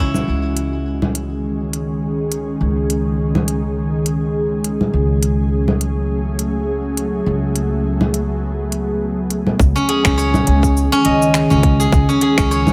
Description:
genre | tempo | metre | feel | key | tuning
organic downtempo | 103 BPM | 4/4 | swing 56% on 16ths | C# minor | A4 = 440 Hz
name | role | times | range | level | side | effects
ethereal airy pad | sustained chords | 0.0-12.7 s | C#3 to G#4 | -23 LUFS | equal | ensemble chorus, built-in reverb, sidechain pumping
steel-string zither | arpeggios | 0.0-2.6, 9.8-12.7 s | C#4 to D#5 | -20 LUFS | equal | digital delay
upright bass | bass | 0.0-12.7 s | C#2 | -22 LUFS | equal | none
organic electronic drum kit | drums | 0.1-12.7 s | congas, finger snaps, hi-hat, shaker | -23 LUFS | equal | overdrive
electronic kick drum | drums | 9.6-12.5 s | none | -18 LUFS | equal | overdrive
room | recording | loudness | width
moderate echo chamber reverb, RT60 2.5 s | none | -18 LUFS | mono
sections
0.3-9.6 A section; 9.6-12.7 B section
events
none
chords
0.3 C#sus2; 4.9 F#madd9/C#; 9.6 C#sus2

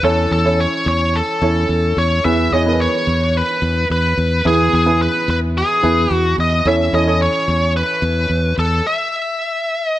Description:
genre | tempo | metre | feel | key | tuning
piano-driven pop | 109 BPM | 4/4 | straight | unclear | A4 = 440 Hz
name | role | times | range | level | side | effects
biting lead guitar | melody | 0.0-10.0 s | G#4 to E5 | -18 LUFS | equal | overdrive
warm upright piano | accompaniment | 0.0-8.9 s | E3 to E5 | -20 LUFS | right 1 dB | none
fingered electric bass | bass | 0.0-8.8 s | E2 | -18 LUFS | equal | none
room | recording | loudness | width
moderate recital hall reverb, RT60 1.4 s | none | -14 LUFS | side -14 dB against mid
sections
0.0-10.0 A section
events
stop 8.8-10.0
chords
0.0 A/E; 2.2 E; 6.7 A/E

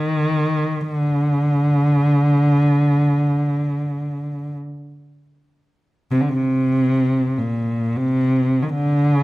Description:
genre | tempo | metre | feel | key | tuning
caucasian folk | free time | none | none | unclear | A4 = 439 Hz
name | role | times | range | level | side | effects
dark cello | solo | 0.0-9.2 s | Bb2 to Eb3 | -16 LUFS | equal | none
room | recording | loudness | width
light reverb | close, detailed microphones | -16 LUFS | side -19 dB against mid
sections
0.0-9.2 A section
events
none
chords
none

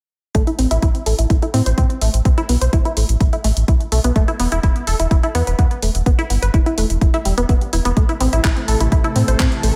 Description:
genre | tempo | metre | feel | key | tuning
melodic techno | 126 BPM | 4/4 | straight | A minor | A4 = 439 Hz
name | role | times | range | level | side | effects
tight sequenced synth | arpeggios | 0.3-9.7 s | G3 to C5 | -24 LUFS | equal | chorus, sidechain pumping, tape echo
round analog bass | bass | 0.3-9.7 s | E1 to A2 | -20 LUFS | equal | sidechain pumping
electronic kick drum | drums | 0.3-9.5 s | none | -18 LUFS | equal | none
house drum kit | drums | 0.3-9.7 s | handclaps, hi-hat | -28 LUFS | equal | sidechain pumping on hats
lush unison pad | sustained chords | 8.4-9.8 s | C3 to A4 | -27 LUFS | equal | chorus, phaser, sidechain pumping
room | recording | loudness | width
light reverb | none | -17 LUFS | mono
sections
0.3-9.8 A section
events
none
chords
0.3 A5; 4.2 E5; 8.0 Am

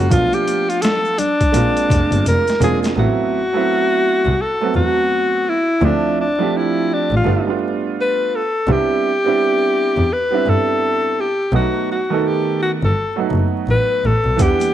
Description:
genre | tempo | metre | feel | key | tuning
hip hop, jazz-hop | 84 BPM | 4/4 | swing 62% on 16ths | unclear | A4 = 444 Hz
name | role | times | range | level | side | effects
breathy alto saxophone | melody | 0.0-14.7 s | D4 to B4 | -18 LUFS | left 2 dB | none
warm upright piano | accompaniment | 0.0-14.7 s | D#3 to F#5 | -20 LUFS | right 7 dB | none
rich double bass | bass | 0.0-14.5 s | E1 to G2 | -18 LUFS | equal | none
boom bap sampler-style drum kit | drums | 0.1-3.0, 14.4-14.7 s | hi-hat, kick drum, snare drum | -20 LUFS | equal | overdrive
egg shaker and congas | percussion | 0.1-3.0, 14.4-14.7 s | none | -31 LUFS | left 8 dB | none
room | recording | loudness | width
light reverb, studio ambience | 1960s-style stereo with parts hard left and right, vinyl crackle | -15 LUFS | side -11 dB against mid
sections
0.0-3.0 A section; 3.0-14.7 B section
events
drum fill 2.3-3.0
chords
0.1 Bm7b5; 1.5 Bb9; 3.0 Am69; 5.8 Dm7; 7.3 G7; 8.7 Cmaj7; 11.5 B7

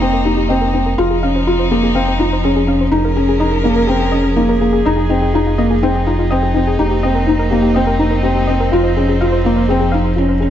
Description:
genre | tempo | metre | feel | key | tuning
piano and strings electronica | 124 BPM | 4/4 | straight | unclear | A4 = 439 Hz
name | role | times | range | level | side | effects
warm string quartet | sustained chords | 0.0-10.5 s | F3 to Bb4 | -20 LUFS | equal | none
soft round pluck | arpeggios | 0.0-10.5 s | Eb4 to F5 | -21 LUFS | left 3 dB | chorus, tape echo
felt-muted upright piano | riff | 0.0-10.5 s | Bb3 to F4 | -16 LUFS | left 1 dB | tape echo
round analog bass | bass | 0.0-10.5 s | F1 | -18 LUFS | equal | none
room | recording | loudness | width
moderate scoring stage reverb, RT60 1.4 s, small room ambience | dark, warm production, nothing above 7.8 kHz | -12 LUFS | side -10 dB against mid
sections
0.0-10.5 A section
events
none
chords
0.0 Cm7/F; 1.0 Dbmaj7/F; 4.9 Fm7; 6.8 Cm7/F; 8.7 Dbmaj7/F

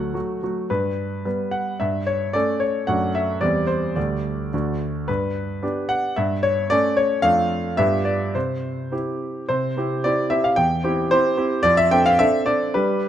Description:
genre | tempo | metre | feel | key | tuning
classical-period piano sonatina | 110 BPM | 2/4 | rubato | G major, C major from 7.2 s | A4 = 440 Hz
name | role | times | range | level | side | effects
clear concert grand piano | solo | 0.0-13.1 s | D2 to G5 | -19 LUFS | equal | none
room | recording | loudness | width
moderate recital hall reverb, RT60 1.3 s | close, detailed microphones | -19 LUFS | side -10 dB against mid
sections
0.7-9.5 A section; 9.5-13.1 B section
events
none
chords
0.0 D; 0.7 G; 1.8 A7/G; 2.9 D/F#; 3.4 C/E; 4.0 Dsus4; 4.5 D; 5.1 G; 6.2 A7/G; 7.2 Dm/F; 7.8 G7; 8.3 C; 10.6 C/E; 11.6 Dm7/F

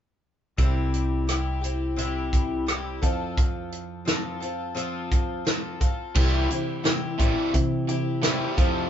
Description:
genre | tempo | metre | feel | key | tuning
folk rock and heartland rock | 86 BPM | 4/4 | straight | C major | A4 = 440 Hz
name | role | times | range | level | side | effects
picked twelve-string acoustic guitar | accompaniment | 0.6-8.9 s | C3 to A4 | -29 LUFS | left 3 dB | none
fingered electric bass | bass | 0.6-8.9 s | A1 to C3 | -29 LUFS | right 1 dB | none
natural country drum kit | drums | 0.6-8.7 s | crash cymbal, hi-hat, kick drum, rim click, snare drum | -24 LUFS | equal | none
crunchy overdriven guitar | riff | 6.2-8.9 s | F2 to G3 | -29 LUFS | equal | none
room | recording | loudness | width
moderate small room ambience, RT60 0.5 s | band playing live in one room, nothing above 7.6 kHz | -23 LUFS | side -10 dB against mid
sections
0.6-6.2 A section; 6.2-8.9 B section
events
none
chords
0.6 C; 3.0 F; 6.2 C

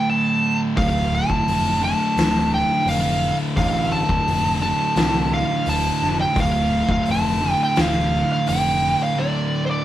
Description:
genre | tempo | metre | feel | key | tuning
stoner and doom metal | 86 BPM | 4/4 | straight | D minor | A4 = 440 Hz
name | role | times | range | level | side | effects
fuzz lead guitar | melody | 0.0-9.8 s | C5 to A5 | -21 LUFS | equal | distortion
thick fuzz guitar | riff | 0.0-9.8 s | D2 to D3 | -25 LUFS | left 2 dB | distortion
thick fuzz guitar | riff | 0.0-9.8 s | D2 to D3 | -25 LUFS | right 4 dB | distortion
growling picked electric bass | bass | 0.8-8.9 s | D1 to C2 | -27 LUFS | equal | overdrive, tube saturation
oversized low-tuned drum kit | drums | 0.8-8.6 s | hi-hat, kick drum, snare drum | -25 LUFS | left 1 dB | none
room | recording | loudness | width
wet stone room reverb, RT60 1.0 s | band playing live in one room, vinyl crackle | -17 LUFS | side -13 dB against mid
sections
0.0-9.8 A section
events
break 9.2-9.8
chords
0.0 Dm

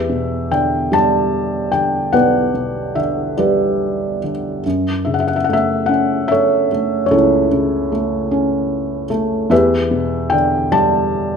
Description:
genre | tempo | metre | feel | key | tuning
classical, lyrical solo piano | 49 BPM (dotted quarters) | 6/8 | rubato | E dorian | A4 = 442 Hz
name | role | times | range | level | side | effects
felt-muted upright piano | solo | 0.0-11.4 s | B1 to A5 | -14 LUFS | equal | none
room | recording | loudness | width
moderate recital hall reverb, RT60 1.4 s | minimal, uncompressed stereo recording | -14 LUFS | side -6 dB against mid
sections
0.0-11.4 A section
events
none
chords
0.0 Em7; 4.7 F#m7; 9.5 Em7

